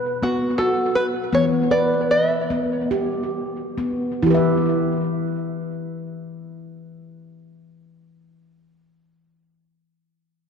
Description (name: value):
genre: world meditative, meditative tuned percussion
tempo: 130-169 BPM (eighths)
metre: 7/8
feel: straight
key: E minor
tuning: A4 = 440 Hz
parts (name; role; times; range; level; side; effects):
- open-back banjo; melody; 0.0-3.3 s; F#4 to E5; -22 LUFS; equal; tape echo
- handpan; arpeggios; 0.0-8.1 s; B2 to E5; -21 LUFS; left 1 dB; tape echo
room: wet church reverb, RT60 2.5 s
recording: dark, warm production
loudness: -19 LUFS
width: side -6 dB against mid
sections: 0.0-4.2 A section; 4.2-7.5 B section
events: slowing down 0.0-4.2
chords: 0.0 B5; 1.3 Em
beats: 0.22 0.58 0.95 | 1.32 1.71 2.10 2.50 2.91 3.33 3.77 | 4.22 4.68 5.14 5.61 6.07 6.53 6.99